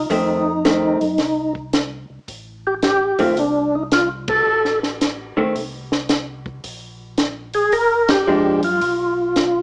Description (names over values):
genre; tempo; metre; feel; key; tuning
soul jazz organ trio; 110 BPM; 4/4; swing 67% on 8ths; F mixolydian; A4 = 440 Hz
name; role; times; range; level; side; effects
percussive tonewheel organ; melody; 0.0-9.6 s; D4 to Bb4; -17 LUFS; equal; slow rotary speaker, overdrive, chorus vibrato
mellow tonewheel organ; bass; 0.0-9.6 s; F1 to Gb2; -33 LUFS; equal; chorus vibrato, slow rotary speaker
vintage hollow-body jazz guitar; accompaniment; 0.1-8.6 s; Eb3 to D4; -19 LUFS; equal; none
compact cocktail drum kit; drums; 0.1-9.5 s; hi-hat, kick drum, ride cymbal, snare drum; -21 LUFS; equal; none
room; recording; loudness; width
moderate studio reverb, RT60 0.8 s; small speaker sound; -16 LUFS; side -31 dB against mid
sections
0.0-9.6 A section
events
band accent 4.2, 8.0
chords
0.0 F7; 6.6 Bb7; 8.8 B(b5, no3)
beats
| 0.10 0.65 1.19 1.74 | 2.28 2.83 3.37 3.92 | 4.46 5.01 5.55 6.10 | 6.64 7.19 7.73 8.28 | 8.82 9.37